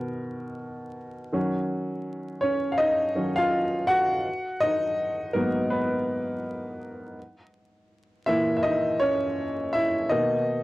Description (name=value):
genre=hip hop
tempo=82 BPM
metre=4/4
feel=swing 59% on 16ths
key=Eb minor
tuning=A4 = 442 Hz
part: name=warm upright piano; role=solo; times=0.0-10.6 s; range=Ab2 to Gb5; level=-24 LUFS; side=equal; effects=none
room=light reverb, small room ambience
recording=dry, gritty hardware recording, vinyl crackle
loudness=-23 LUFS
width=side -18 dB against mid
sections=0.0-10.6 A section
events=upright piano solo 0.0-10.6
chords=0.0 Bmaj7; 1.3 Ebm9; 4.2 Abm9; 7.2 Bbdim; 10.1 Bmaj7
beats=0.59 | 1.32 2.05 2.78 3.51 | 4.25 4.98 5.71 6.44 | 7.17 7.91 8.64 9.37 | 10.10